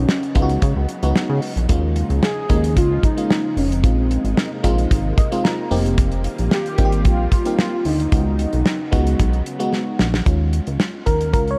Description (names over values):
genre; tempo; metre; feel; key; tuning
early-eighties boogie funk; 112 BPM; 4/4; straight; unclear; A4 = 440 Hz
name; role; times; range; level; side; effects
warm velvety synth lead; melody; 0.0-9.7 s; C4 to Ab4; -27 LUFS; equal; chorus, analog delay
FM electric piano with soft pad layer; accompaniment; 0.0-11.6 s; Ab3 to Bb5; -26 LUFS; equal; chorus
soft string machine; sustained chords; 0.0-10.2 s; C3 to F4; -34 LUFS; equal; ensemble chorus
chorused synth bass; bass; 0.0-11.6 s; F1 to Db3; -22 LUFS; equal; none
damped 70s drum kit; drums; 0.1-11.6 s; hi-hat, kick drum, snare drum; -22 LUFS; equal; none
room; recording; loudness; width
light reverb; none; -19 LUFS; mono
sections
0.0-10.3 A section; 10.3-11.6 B section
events
FM electric piano fill 4.9-6.0; drum fill 9.7-10.3; FM electric piano solo 10.3-11.6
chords
0.0 Db9sus4; 1.7 Eb9sus4; 3.8 Bb9sus4; 5.7 F9sus4; 8.1 Db9sus4; 10.3 Eb9sus4